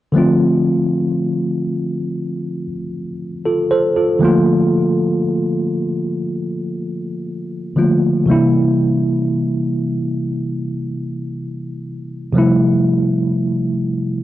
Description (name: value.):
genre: R&B.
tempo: 59 BPM.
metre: 4/4.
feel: straight.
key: D minor.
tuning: A4 = 440 Hz.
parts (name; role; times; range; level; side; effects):
mellow tine electric piano; accompaniment; 0.1-14.2 s; C3 to C5; -16 LUFS; equal; medium stereo tremolo.
room: light reverb.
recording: dry, gritty hardware recording, transformer saturation, cassette tape.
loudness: -15 LUFS.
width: side -14 dB against mid.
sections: 0.1-14.2 A section.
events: none.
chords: 0.1 Dm7; 4.2 Bbmaj7; 8.3 C7; 12.3 Fmaj9.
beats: | 0.14 1.16 2.18 3.19 | 4.21 5.23 6.24 7.26 | 8.28 9.29 10.31 11.33 | 12.35 13.36.